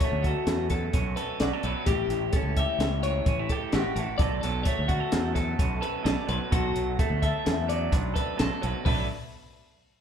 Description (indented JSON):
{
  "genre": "math rock and midwest emo",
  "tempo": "129 BPM",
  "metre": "5/4",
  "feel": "straight",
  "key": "B minor",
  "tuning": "A4 = 440 Hz",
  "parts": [
    { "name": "electric guitar through a small old amp", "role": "accompaniment", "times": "0.0-9.1 s", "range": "F#2 to A4", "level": "-32 LUFS", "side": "right 6 dB", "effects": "none" },
    { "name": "twelve-string electric guitar", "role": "arpeggios", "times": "0.0-9.1 s", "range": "F#4 to E5", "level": "-31 LUFS", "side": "left 4 dB", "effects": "spring reverb" },
    { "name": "compact cocktail drum kit", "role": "drums", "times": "0.0-9.0 s", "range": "hi-hat, kick drum, snare drum, toms", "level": "-28 LUFS", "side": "equal", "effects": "none" },
    { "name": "growling fingered electric bass", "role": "bass", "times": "0.1-9.1 s", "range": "A1 to E2", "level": "-30 LUFS", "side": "equal", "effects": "overdrive" }
  ],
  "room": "moderate recital hall reverb, RT60 1.4 s",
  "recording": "recorded in a church or concert hall",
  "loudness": "-24 LUFS",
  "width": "side -8 dB against mid",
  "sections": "0.0-8.9 A section; 8.9-10.0 B section",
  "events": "none",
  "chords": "0.0 Bm9; 1.9 A7; 4.2 Bm9; 6.5 Bm7",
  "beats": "0.01 0.47 0.94 1.40 | 1.87 2.33 2.79 3.26 3.73 | 4.19 4.66 5.12 5.59 6.05 | 6.52 6.99 7.45 7.92 8.39 | 8.85"
}